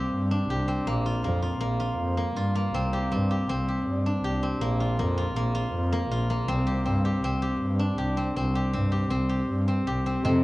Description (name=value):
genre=contemporary instrumental, chamber music in an uneven meter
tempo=160 BPM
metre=5/4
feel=straight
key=unclear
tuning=A4 = 440 Hz
part: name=steel-string zither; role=arpeggios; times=0.0-10.4 s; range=Bb3 to G4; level=-28 LUFS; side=equal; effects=analog delay
part: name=rich double bass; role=bass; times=0.0-10.4 s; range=Bb1 to G2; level=-26 LUFS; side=equal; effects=none
part: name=bright cello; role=second line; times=10.2-10.4 s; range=C3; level=-21 LUFS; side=left 1 dB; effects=none
part: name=mellow woodwind section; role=sustained chords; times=10.2-10.4 s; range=F3 to Eb5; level=-29 LUFS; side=right 1 dB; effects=none
part: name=frame drum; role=percussion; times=10.3-10.4 s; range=none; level=-31 LUFS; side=right 1 dB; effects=none
room=moderate studio reverb, RT60 0.6 s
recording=worn, warbling old tape, cassette tape, warbly pitch drift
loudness=-24 LUFS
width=side -19 dB against mid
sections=0.0-10.2 A section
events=none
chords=0.0 Csus2; 0.9 Bb5; 2.7 Csus2; 4.6 Bb5; 6.5 Csus2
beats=0.12 0.50 | 0.87 1.24 1.61 1.99 2.37 | 2.75 3.12 3.50 3.87 4.25 | 4.62 4.99 5.36 5.74 6.11 | 6.48 6.85 7.22 7.60 7.97 | 8.35 8.73 9.10 9.48 9.87 | 10.25